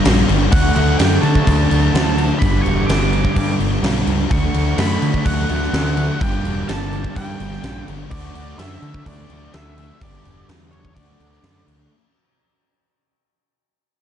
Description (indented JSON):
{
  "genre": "rock, shoegaze and dream pop",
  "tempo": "126 BPM",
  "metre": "4/4",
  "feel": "straight",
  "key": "D major",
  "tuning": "A4 = 440 Hz",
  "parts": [
    { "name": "overdriven electric guitar", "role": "riff", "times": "0.0-11.9 s", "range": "G2 to G4", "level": "-26 LUFS", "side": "right 9 dB", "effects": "reverse reverb" },
    { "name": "overdriven semi-hollow guitar", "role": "riff", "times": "0.0-11.9 s", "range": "G2 to D4", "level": "-25 LUFS", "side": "equal", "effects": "none" },
    { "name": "thick fuzz guitar", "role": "riff", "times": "0.0-11.9 s", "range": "G2 to D4", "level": "-24 LUFS", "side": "left 8 dB", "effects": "distortion, wide subtle chorus" },
    { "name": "growling picked electric bass", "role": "bass", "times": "0.1-11.9 s", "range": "E1 to D3", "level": "-20 LUFS", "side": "equal", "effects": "overdrive" },
    { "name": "huge arena drum kit", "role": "drums", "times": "0.1-11.8 s", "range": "crash cymbal, kick drum, snare drum", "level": "-20 LUFS", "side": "equal", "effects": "none" },
    { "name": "octave-fuzz lead guitar", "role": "melody", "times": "0.5-11.6 s", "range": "C#5 to D6", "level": "-28 LUFS", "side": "equal", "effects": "distortion, tape echo" }
  ],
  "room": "little or no reverb",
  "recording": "dark, warm production, nothing above 10.9 kHz",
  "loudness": "-15 LUFS",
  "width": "side -9 dB against mid",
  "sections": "0.0-11.9 A section",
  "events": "fade-out 0.0-11.9",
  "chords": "0.0 Gm; 0.5 D; 2.4 G; 4.3 D6; 6.2 Gm; 8.1 D; 10.0 G; 11.0 D",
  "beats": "0.05 | 0.53 1.00 1.47 1.95 | 2.42 2.89 3.37 3.84 | 4.31 4.79 5.26 5.74 | 6.21 6.68 7.16 7.63 | 8.11 8.59 9.06 9.54 | 10.01 10.49 10.96 11.44"
}